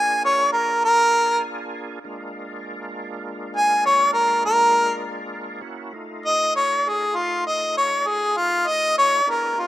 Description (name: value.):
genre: blues.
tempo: 66 BPM (dotted quarters).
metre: 12/8.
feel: straight.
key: Bb mixolydian.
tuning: A4 = 440 Hz.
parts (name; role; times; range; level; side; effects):
warm harmonica; melody; 0.0-9.7 s; F4 to Ab5; -18 LUFS; equal; none.
overdriven tonewheel organ; sustained chords; 0.0-9.7 s; Ab3 to Ab4; -32 LUFS; right 1 dB; slow rotary speaker, chorus vibrato.
room: light reverb, studio reverb.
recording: rough home demo mix.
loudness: -17 LUFS.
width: side -15 dB against mid.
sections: 0.0-9.7 A section.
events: none.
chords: 0.0 Bb7; 5.6 F7.